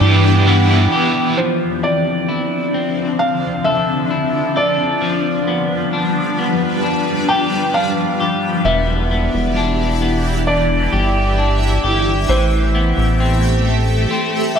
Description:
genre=dream pop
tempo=66 BPM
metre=4/4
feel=straight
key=D dorian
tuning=A4 = 437 Hz
part: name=biting overdriven guitar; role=accompaniment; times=0.0-1.4 s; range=E3 to B4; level=-20 LUFS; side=right 4 dB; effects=tremolo, lush chorus
part: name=granular cloud pad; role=sustained chords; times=0.0-14.6 s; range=D3 to E5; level=-19 LUFS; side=equal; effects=built-in reverb, tremolo, phaser
part: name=electric guitar at the edge of break-up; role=arpeggios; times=0.0-14.6 s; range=E3 to A4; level=-20 LUFS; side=left 4 dB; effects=lush chorus, ping-pong delay
part: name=fat analog bass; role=bass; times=0.0-0.9, 8.6-14.1 s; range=E1 to G2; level=-16 LUFS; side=equal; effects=none
part: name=felt-muted upright piano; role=melody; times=1.4-14.6 s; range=C5 to G5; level=-21 LUFS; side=right 1 dB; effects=ping-pong delay
room=moderate scoring stage reverb, RT60 1.9 s, digital ambience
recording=none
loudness=-14 LUFS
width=side -7 dB against mid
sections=0.0-1.4 A section; 1.4-14.6 B section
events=none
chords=0.0 Em7; 1.4 Dm9; 5.0 G7; 8.6 Em7; 12.3 Am9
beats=0.47 | 1.38 2.29 3.19 4.10 | 5.01 5.92 6.83 7.74 | 8.65 9.56 10.47 11.38 | 12.29 13.19 14.10

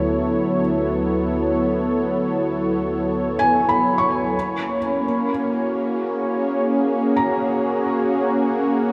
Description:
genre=ambient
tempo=free time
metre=none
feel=none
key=D lydian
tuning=A4 = 441 Hz
part: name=warm analog pad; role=sustained chords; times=0.0-8.9 s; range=D2 to C#5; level=-22 LUFS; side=equal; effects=chorus
part: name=felt-muted upright piano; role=arpeggios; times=0.0-8.9 s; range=G#5 to C#6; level=-26 LUFS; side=equal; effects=diffuse ambient delay
room=wet cathedral reverb, RT60 5.7 s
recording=in a vast, echoing space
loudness=-21 LUFS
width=mono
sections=0.0-8.9 A section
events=none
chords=0.0 Dmaj7; 4.3 F#add9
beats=free time

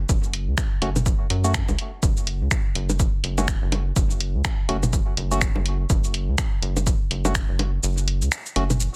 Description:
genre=minimal techno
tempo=124 BPM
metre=4/4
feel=swing 58% on 16ths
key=F# minor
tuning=A4 = 441 Hz
part: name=rubbery square bass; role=bass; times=0.0-8.9 s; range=F#1 to F#2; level=-27 LUFS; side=equal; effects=sidechain pumping
part: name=electronic kick drum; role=drums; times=0.1-7.5 s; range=none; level=-26 LUFS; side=equal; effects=none
part: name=punchy analog drum machine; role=drums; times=0.1-8.9 s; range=finger snaps, hi-hat, shaker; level=-30 LUFS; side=equal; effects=soft clipping on snare
part: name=percussive organ stab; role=stabs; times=0.8-8.6 s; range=A3 to F#4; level=-32 LUFS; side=equal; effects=chorus, dub echo
part: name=electronic toms and bongos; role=percussion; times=1.0-8.8 s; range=none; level=-30 LUFS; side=equal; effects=none
room=little or no reverb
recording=dense, heavily limited modern master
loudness=-23 LUFS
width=mono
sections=0.0-9.0 A section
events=kick drops out 7.8-9.0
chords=0.0 F#m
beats=| 0.09 0.58 1.06 1.54 | 2.03 2.51 3.00 3.48 | 3.96 4.45 4.93 5.41 | 5.90 6.38 6.87 7.35 | 7.83 8.32 8.80

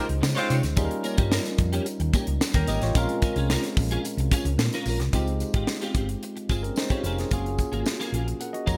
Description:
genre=polished 1980s jazz-funk pop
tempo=110 BPM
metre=4/4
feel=straight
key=unclear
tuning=A4 = 441 Hz
part: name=warm horn section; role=second line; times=0.0-0.6 s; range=Ab3 to C5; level=-32 LUFS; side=equal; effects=none
part: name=barky tine electric piano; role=accompaniment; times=0.0-8.8 s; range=G3 to Bb5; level=-33 LUFS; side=equal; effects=subtle chorus
part: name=clean electric guitar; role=riff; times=0.0-8.8 s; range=Bb3 to Db5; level=-35 LUFS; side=equal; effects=ensemble chorus
part: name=hollow-body short-scale fingered electric bass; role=bass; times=0.1-8.8 s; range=F1 to Db3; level=-29 LUFS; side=equal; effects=none
part: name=crisp fusion drum kit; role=drums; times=0.1-8.8 s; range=hi-hat, kick drum, snare drum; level=-29 LUFS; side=equal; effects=gated reverb
part: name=tambourine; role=percussion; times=0.2-8.8 s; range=none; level=-44 LUFS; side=equal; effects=none
room=small room reverb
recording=none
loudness=-25 LUFS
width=mono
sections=0.0-5.1 A section; 5.1-8.8 B section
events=tine electric piano fill 8.4-8.8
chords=0.0 Dbmaj9; 0.8 Eb7; 3.0 Bbm7; 5.1 Dbmaj9#11; 7.3 Gbmaj9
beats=0.23 | 0.78 1.32 1.87 2.41 | 2.95 3.50 4.04 4.59 | 5.13 5.68 6.22 6.77 | 7.31 7.86 8.40

